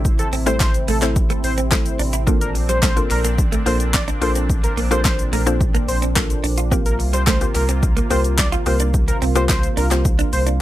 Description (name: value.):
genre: dance-pop.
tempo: 108 BPM.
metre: 4/4.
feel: straight.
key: unclear.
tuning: A4 = 439 Hz.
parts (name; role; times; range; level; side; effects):
mallet-like synth pluck; accompaniment; 0.0-10.4 s; A3 to C5; -25 LUFS; left 4 dB; chorus, sidechain pumping.
filtered supersaw swell; sustained chords; 0.0-10.6 s; Bb2 to F4; -28 LUFS; right 1 dB; sidechain pumping.
warm sub bass; bass; 0.0-10.6 s; A1 to C2; -21 LUFS; equal; sidechain pumping.
deep house drum kit; drums; 0.0-10.6 s; handclaps, hi-hat, kick drum, shaker, snare drum; -19 LUFS; equal; none.
fat analog lead; melody; 0.2-10.4 s; A4 to D5; -25 LUFS; equal; sidechain pumping, ping-pong delay.
direct-recorded clean electric guitar; riff; 0.2-10.6 s; G3 to F4; -26 LUFS; right 6 dB; lush chorus.
group handclap; percussion; 0.6-9.6 s; none; -28 LUFS; left 6 dB; none.
room: little or no reverb.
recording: none.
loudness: -16 LUFS.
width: side -14 dB against mid.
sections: 0.0-10.6 A section.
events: none.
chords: 0.0 Am; 2.3 Bbmaj7; 6.7 C7sus4.